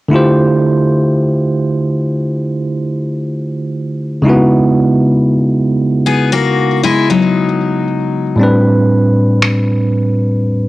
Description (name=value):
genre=contemporary R&B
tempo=58 BPM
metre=4/4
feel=straight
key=unclear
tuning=A4 = 440 Hz
part: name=bell-like tine electric piano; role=accompaniment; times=0.1-10.7 s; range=A2 to C5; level=-12 LUFS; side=right 1 dB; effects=auto-pan, cassette tape
part: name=picked steel-string acoustic guitar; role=arpeggios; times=6.1-8.4 s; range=F#3 to G#4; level=-13 LUFS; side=left 5 dB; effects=cassette tape, tape echo
part: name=electronic finger snaps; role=drums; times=9.4-9.7 s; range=none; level=-15 LUFS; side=equal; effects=vintage 12-bit sampler grit, cassette tape
room=light reverb, studio reverb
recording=home recording on cassette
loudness=-11 LUFS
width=side -17 dB against mid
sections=0.1-10.7 A section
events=none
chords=0.1 Dm11; 4.2 C#m11; 8.4 Am11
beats=| 0.11 1.15 2.18 3.21 | 4.25 5.28 6.32 7.35 | 8.39 9.42 10.46